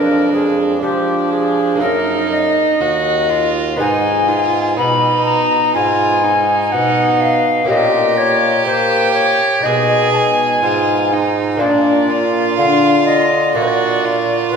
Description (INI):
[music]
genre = classical, baroque-style sonata movement with continuo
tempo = 62 BPM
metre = 4/4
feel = straight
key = unclear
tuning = A4 = 437 Hz
[part]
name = alto recorder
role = melody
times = 0.0-14.6 s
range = G4 to Cb6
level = -16 LUFS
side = left 4 dB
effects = none
[part]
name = warm violin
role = second line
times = 0.0-14.6 s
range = D4 to Ab4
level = -18 LUFS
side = right 6 dB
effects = none
[part]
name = lute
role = accompaniment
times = 0.0-14.6 s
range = Eb2 to Bb4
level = -21 LUFS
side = left 1 dB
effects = none
[part]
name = warm bassoon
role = bass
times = 0.0-14.6 s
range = Eb2 to Bb3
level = -20 LUFS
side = right 2 dB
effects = none
[sound]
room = wet church reverb, RT60 3.2 s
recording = recorded in a church or concert hall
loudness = -12 LUFS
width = side -6 dB against mid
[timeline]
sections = 0.0-14.6 A section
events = none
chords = 0.0 Ddim/F; 1.8 Ebm/Gb; 3.8 Abm; 7.7 Gdim/Bb; 9.7 Abm/Cb; 11.6 Bb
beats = 0.83 1.81 2.81 | 3.80 4.78 5.76 6.73 | 7.71 8.68 9.66 10.64 | 11.61 12.58 13.55 14.52